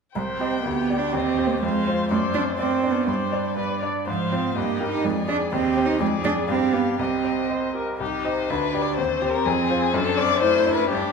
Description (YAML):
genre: quick classical-period movement for piano quartet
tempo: 123 BPM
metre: 2/4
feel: straight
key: C minor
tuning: A4 = 440 Hz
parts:
  - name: warm violin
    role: melody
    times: 0.2-11.1 s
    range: G4 to G5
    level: -27 LUFS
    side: left 8 dB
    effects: none
  - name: warm cello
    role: second line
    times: 0.2-11.1 s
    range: F3 to E4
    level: -24 LUFS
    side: right 6 dB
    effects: none
  - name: bright grand piano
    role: accompaniment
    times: 0.2-11.1 s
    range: C2 to F5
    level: -26 LUFS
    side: left 3 dB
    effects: none
  - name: rich viola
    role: accompaniment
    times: 0.2-11.1 s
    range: A3 to D5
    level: -30 LUFS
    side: right 3 dB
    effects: none
room: wet recital hall reverb, RT60 1.4 s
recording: minimal, uncompressed stereo recording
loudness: -20 LUFS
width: side -5 dB against mid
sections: 0.2-8.0 A section; 8.0-11.1 A section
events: none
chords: 0.2 Cm; 0.7 G/D; 1.1 Cm/Eb; 1.6 Fm; 2.1 D7/F#; 3.1 Gsus4; 3.6 G; 4.1 Fm/Ab; 4.6 Eb/G; 5.0 Ddim/F; 5.5 Cm/Eb; 6.0 Ddim/F; 6.5 G7; 7.0 Cm; 8.5 G/D; 9.0 Cm/Eb; 9.5 Fm; 9.9 D7/F#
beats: | 0.16 0.65 | 1.14 1.63 | 2.11 2.59 | 3.08 3.57 | 4.07 4.56 | 5.04 5.52 | 6.00 6.49 | 6.99 7.50 | 8.00 8.50 | 8.98 9.46 | 9.94 10.42 | 10.91